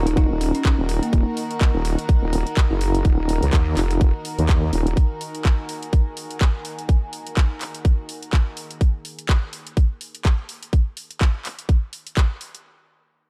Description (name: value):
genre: bass house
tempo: 125 BPM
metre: 4/4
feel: swing 57% on 16ths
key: Eb minor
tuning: A4 = 440 Hz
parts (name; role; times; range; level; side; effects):
- warm studio string section; sustained chords; 0.0-8.8 s; Eb3 to Bb4; -35 LUFS; equal; sidechain pumping
- vowel-sweep wobble bass; bass; 0.0-5.0 s; Eb1 to Eb2; -23 LUFS; equal; chorus, tube saturation, sidechain pumping
- deep dark ambient pad; texture; 0.3-8.8 s; Eb4 to Ab5; -39 LUFS; equal; none
- folk marimba with medium mallets; melody; 0.1-1.2 s; Bb3 to Eb4; -30 LUFS; equal; dub echo
- house drum kit; drums; 0.1-12.6 s; handclaps, hi-hat; -33 LUFS; equal; overdrive
- electronic kick drum; drums; 0.2-12.3 s; none; -19 LUFS; equal; none
room: digital ambience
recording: dark, warm production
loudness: -22 LUFS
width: mono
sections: 0.0-12.6 A section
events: none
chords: 0.0 Ebm